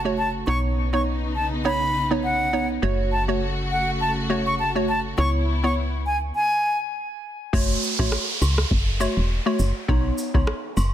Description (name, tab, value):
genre	dancehall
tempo	102 BPM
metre	4/4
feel	swing 56% on 16ths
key	F# dorian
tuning	A4 = 440 Hz
part	hollow square pluck	accompaniment	0.0-10.5 s	A3 to C#5	-26 LUFS	right 1 dB	chorus
part	warm studio string section	sustained chords	0.0-6.3 s	C#3 to F#4	-30 LUFS	left 1 dB	sidechain pumping
part	woody FM bass	bass	0.0-10.9 s	E1 to C#2	-25 LUFS	equal	none
part	bright reedy concert flute	melody	0.2-6.8 s	F#5 to C#6	-24 LUFS	left 1 dB	ping-pong delay
part	booming analog drum machine	drums	7.5-10.6 s	kick drum, rim click	-23 LUFS	equal	none
part	woodblock and cabasa	percussion	7.5-10.9 s	none	-35 LUFS	equal	none
part	downlifter	sound effects	7.5-10.9 s	none	-28 LUFS	right 3 dB	none
room	light reverb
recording	dense, heavily limited modern master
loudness	-20 LUFS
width	side -11 dB against mid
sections	0.0-7.5 A section; 7.5-10.9 B section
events	stop 6.4-7.5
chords	0.5 Badd9; 2.8 F#m; 5.2 C#m7; 7.5 F#m; 9.9 Badd9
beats	| 0.47 1.06 1.65 2.24 | 2.83 3.42 4.00 4.59 | 5.18 5.77 6.36 6.95 | 7.53 8.12 8.71 9.30 | 9.89 10.47